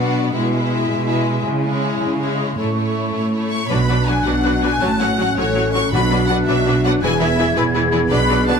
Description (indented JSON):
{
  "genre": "cinematic",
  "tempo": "108 BPM (dotted quarters)",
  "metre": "6/8",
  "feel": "straight",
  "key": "B dorian",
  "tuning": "A4 = 440 Hz",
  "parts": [
    { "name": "rich studio violin section", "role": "melody", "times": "0.0-8.6 s", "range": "B4 to C#6", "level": "-24 LUFS", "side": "left 3 dB", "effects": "none" },
    { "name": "bright large flute ensemble", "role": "second line", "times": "0.0-8.6 s", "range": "F#5 to G#6", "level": "-26 LUFS", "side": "left 1 dB", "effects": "none" },
    { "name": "clear clarinet", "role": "second line", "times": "0.0-8.6 s", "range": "C#4 to E4", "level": "-27 LUFS", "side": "left 4 dB", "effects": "none" },
    { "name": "rich studio violin section", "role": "second line", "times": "0.0-8.6 s", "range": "E4 to D5", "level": "-27 LUFS", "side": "left 3 dB", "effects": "none" },
    { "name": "clear studio viola section", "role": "accompaniment", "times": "0.0-8.6 s", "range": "E3 to E4", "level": "-24 LUFS", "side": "left 1 dB", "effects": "none" },
    { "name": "dark French horn section", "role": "sustained chords", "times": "0.0-8.6 s", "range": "F#3 to A4", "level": "-25 LUFS", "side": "left 4 dB", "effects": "none" },
    { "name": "rich symphonic cello section", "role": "bass", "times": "0.0-8.6 s", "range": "E2 to C#3", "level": "-21 LUFS", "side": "right 2 dB", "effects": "none" },
    { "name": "clear trombone section", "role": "sustained chords", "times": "3.7-8.5 s", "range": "D3 to D4", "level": "-26 LUFS", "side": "right 6 dB", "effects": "none" },
    { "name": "rich symphonic double bass section", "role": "bass", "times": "3.7-8.6 s", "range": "E1 to B1", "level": "-23 LUFS", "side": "right 4 dB", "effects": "none" },
    { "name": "timpani", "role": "percussion", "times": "5.9-6.4 s", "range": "B2", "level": "-25 LUFS", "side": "right 1 dB", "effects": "none" }
  ],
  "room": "light reverb",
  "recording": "none",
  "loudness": "-15 LUFS",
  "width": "side -6 dB against mid",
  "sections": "0.0-3.7 A section; 3.7-8.6 B section",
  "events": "build-up 0.0-3.7",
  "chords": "0.3 E/B; 1.4 C#m; 2.6 A; 3.7 Bm; 4.8 F#m/A; 5.9 Bm; 7.0 E",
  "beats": "| 0.34 0.89 | 1.45 2.01 | 2.58 3.14 | 3.71 4.26 | 4.82 5.38 | 5.93 6.48 | 7.03 7.58 | 8.12"
}